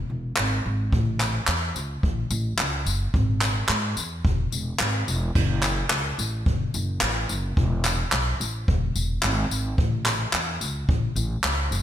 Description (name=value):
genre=acoustic pop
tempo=108 BPM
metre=4/4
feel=straight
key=F# minor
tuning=A4 = 445 Hz
part: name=upright bass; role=bass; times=0.0-11.8 s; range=E1 to G#2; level=-26 LUFS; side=equal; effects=none
part: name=jazz brush drum kit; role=drums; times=0.4-11.8 s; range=crash cymbal, handclaps, kick drum, tambourine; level=-24 LUFS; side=left 1 dB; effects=gated reverb
room=light reverb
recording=bright 1980s-style digital production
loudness=-22 LUFS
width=side -11 dB against mid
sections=0.0-5.4 A section; 5.4-11.8 B section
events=none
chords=none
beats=0.37 | 0.93 1.48 2.03 2.59 | 3.14 3.69 4.25 4.80 | 5.36 5.91 6.46 7.02 | 7.57 8.12 8.68 9.23 | 9.78 10.34 10.89 11.44